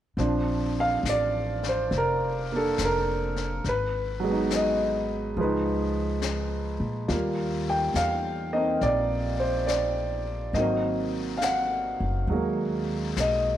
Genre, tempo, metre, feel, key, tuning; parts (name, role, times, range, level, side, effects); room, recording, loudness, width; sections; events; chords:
jazz ballad; 70 BPM; 4/4; swing 67% on 8ths; A4 = 440 Hz
warm upright piano; accompaniment; 0.2-13.6 s; Eb3 to G5; -25 LUFS; right 1 dB
upright bass; bass; 0.2-13.6 s; F1 to Bb2; -31 LUFS; left 1 dB
jazz brush drum kit; drums; 0.2-13.6 s; brushed snare drum, hi-hat, snare drum; -37 LUFS; left 9 dB
moderate echo chamber reverb, RT60 2.1 s; 1960s-style stereo; -24 LUFS; side -11 dB against mid
0.2-13.6 A section
0.2 Bbmaj7; 3.7 Abm7; 5.4 Db9; 7.1 Ebmaj9; 10.5 Ab9